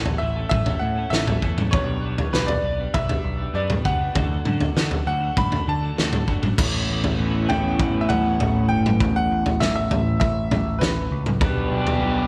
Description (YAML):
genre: indie rock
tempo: 99 BPM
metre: 4/4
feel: straight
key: A mixolydian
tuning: A4 = 442 Hz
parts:
  - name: bright upright piano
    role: melody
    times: 0.0-11.2 s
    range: B4 to B5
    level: -29 LUFS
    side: equal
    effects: slapback echo
  - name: raw garage guitar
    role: riff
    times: 0.0-12.3 s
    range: A2 to A4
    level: -31 LUFS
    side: equal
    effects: overdrive, slapback echo
  - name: twelve-string electric guitar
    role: riff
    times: 0.0-12.3 s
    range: A2 to B4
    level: -31 LUFS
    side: equal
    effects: lush chorus
  - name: growling picked electric bass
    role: bass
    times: 0.0-12.3 s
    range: G1 to D3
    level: -29 LUFS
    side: equal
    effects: overdrive
  - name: loose indie drum kit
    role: drums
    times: 0.1-12.0 s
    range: crash cymbal, kick drum, snare drum, toms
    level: -26 LUFS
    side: equal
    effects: none
room: moderate lush hall reverb, RT60 1.6 s, small room ambience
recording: big arena sound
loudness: -22 LUFS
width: mono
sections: 0.0-6.6 A section; 6.6-12.3 B section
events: none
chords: 0.0 Aadd9; 1.7 G/B; 4.2 D; 6.6 Aadd9; 11.4 G/B